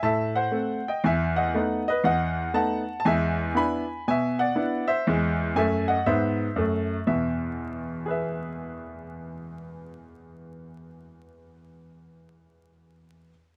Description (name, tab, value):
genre	jazz, stride piano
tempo	120 BPM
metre	4/4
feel	swing 64% on 8ths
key	E major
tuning	A4 = 439 Hz
part	bright grand piano	solo	0.0-13.3 s	E2 to B5	-26 LUFS	equal	none
room	light reverb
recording	close, detailed microphones, vinyl crackle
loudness	-26 LUFS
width	mono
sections	0.0-7.1 A section; 7.1-11.1 B section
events	none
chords	0.0 Am; 1.0 B7/E; 3.0 E7; 5.1 Am/E; 7.1 E